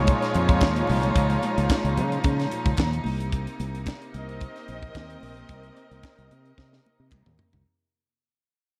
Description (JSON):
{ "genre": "disco", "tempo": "111 BPM", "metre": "4/4", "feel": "straight", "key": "unclear", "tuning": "A4 = 445 Hz", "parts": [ { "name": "warm studio string section", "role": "second line", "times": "0.0-7.4 s", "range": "Ab3 to Eb5", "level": "-34 LUFS", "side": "equal", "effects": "none" }, { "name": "clear studio string section", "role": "sustained chords", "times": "0.0-7.6 s", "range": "Bb2 to Eb4", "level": "-34 LUFS", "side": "equal", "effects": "none" }, { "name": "warm horn section", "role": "stabs", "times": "0.0-7.1 s", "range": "Ab3 to Eb5", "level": "-34 LUFS", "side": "equal", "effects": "none" }, { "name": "fingered electric bass", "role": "bass", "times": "0.0-7.6 s", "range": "Bb1 to Db3", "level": "-29 LUFS", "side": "equal", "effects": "none" }, { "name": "tight funk drum kit", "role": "drums", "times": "0.1-7.7 s", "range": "hi-hat, kick drum, snare drum, toms", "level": "-28 LUFS", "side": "equal", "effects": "none" }, { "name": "congas", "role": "percussion", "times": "0.4-7.5 s", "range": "none", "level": "-38 LUFS", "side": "equal", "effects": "none" }, { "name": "group handclap", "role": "percussion", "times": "0.6-7.3 s", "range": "none", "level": "-42 LUFS", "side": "equal", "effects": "none" } ], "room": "small room ambience", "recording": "dark, warm production", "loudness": "-24 LUFS", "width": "mono", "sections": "0.0-7.7 A section", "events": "fade-out 0.0-7.7; drum fill 6.6-7.7", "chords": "0.0 Dbadd9; 3.1 Cm7" }